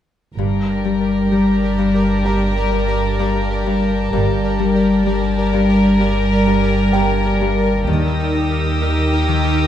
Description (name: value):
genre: cinematic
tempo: 64 BPM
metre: 4/4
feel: straight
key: G minor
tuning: A4 = 440 Hz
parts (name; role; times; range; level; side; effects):
- rich studio violin section; melody; 0.4-9.7 s; G4 to Bb4; -24 LUFS; left 4 dB; none
- pulsing gated texture; sustained chords; 0.4-9.7 s; Eb4 to D5; -24 LUFS; right 2 dB; chorus, built-in reverb
- Celtic harp; riff; 0.4-9.7 s; G2 to Eb4; -19 LUFS; left 4 dB; none
- dark studio double bass section; bass; 0.4-8.8 s; G1 to Eb2; -24 LUFS; right 4 dB; none
- warm studio cello section; bass; 0.4-9.7 s; Eb2 to G2; -21 LUFS; right 2 dB; none
- pure sine sub bass; drone; 0.4-9.7 s; G1 to Eb2; -22 LUFS; right 1 dB; none
- dark studio violin section; texture; 0.4-9.7 s; G5 to Bb6; -29 LUFS; equal; none
- felt-muted upright piano; texture; 2.2-9.7 s; G5 to Bb5; -30 LUFS; right 3 dB; none
room: wet recital hall reverb, RT60 1.6 s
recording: none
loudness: -14 LUFS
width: side -10 dB against mid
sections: 0.4-9.7 A section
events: none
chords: 0.4 Gm; 7.9 Eb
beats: | 0.38 1.32 2.25 3.19 | 4.13 5.07 6.00 6.94 | 7.88 8.82